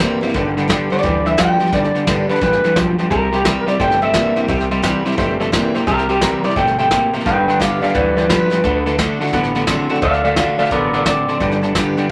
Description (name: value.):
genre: rockabilly.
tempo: 174 BPM.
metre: 4/4.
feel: swing 64% on 8ths.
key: G major.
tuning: A4 = 440 Hz.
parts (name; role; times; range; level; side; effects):
picked steel-string acoustic guitar; accompaniment; 0.0-12.1 s; G2 to G4; -28 LUFS; equal; none.
tack piano; accompaniment; 0.0-12.1 s; A4 to A5; -29 LUFS; equal; none.
electric guitar at the edge of break-up; riff; 0.0-12.1 s; G2 to C4; -21 LUFS; equal; spring reverb.
upright bass; bass; 0.0-12.0 s; G1 to D2; -29 LUFS; equal; none.
soft brush drum kit; drums; 0.0-12.0 s; hi-hat, kick drum, snare drum; -25 LUFS; equal; none.
electric guitar through a small old amp; melody; 0.9-11.7 s; G4 to G5; -20 LUFS; equal; none.
room: moderate club reverb, RT60 0.6 s.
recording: none.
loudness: -16 LUFS.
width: mono.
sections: 0.0-12.1 A section.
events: drum fill 8.5.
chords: 0.3 G; 3.1 C; 7.3 G; 8.6 D; 11.4 G.